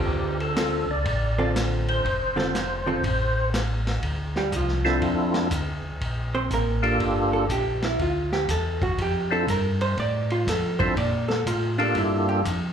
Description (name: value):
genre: soul jazz organ trio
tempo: 121 BPM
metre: 4/4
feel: swing 66% on 8ths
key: D minor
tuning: A4 = 440 Hz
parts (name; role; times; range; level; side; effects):
- percussive tonewheel organ; melody; 0.0-12.4 s; Bb3 to D5; -25 LUFS; equal; slow rotary speaker, chorus vibrato, plate reverb, slapback echo
- vintage hollow-body jazz guitar; accompaniment; 0.0-12.4 s; D3 to D5; -27 LUFS; right 2 dB; plate reverb, slapback echo
- mellow tonewheel organ; bass; 0.0-12.7 s; F1 to Bb2; -27 LUFS; equal; slow rotary speaker
- vintage drum kit; drums; 0.4-12.6 s; hi-hat, kick drum, ride cymbal, snare drum; -31 LUFS; left 1 dB; none
room: light reverb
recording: live gig heard through the venue's PA, club reverb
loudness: -22 LUFS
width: side -8 dB against mid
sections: 0.0-4.0 A section; 4.0-12.7 B section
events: hollow-body jazz guitar solo 4.0-12.7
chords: 0.1 Dm7; 6.0 Gm7; 8.0 Dm; 12.0 Gm7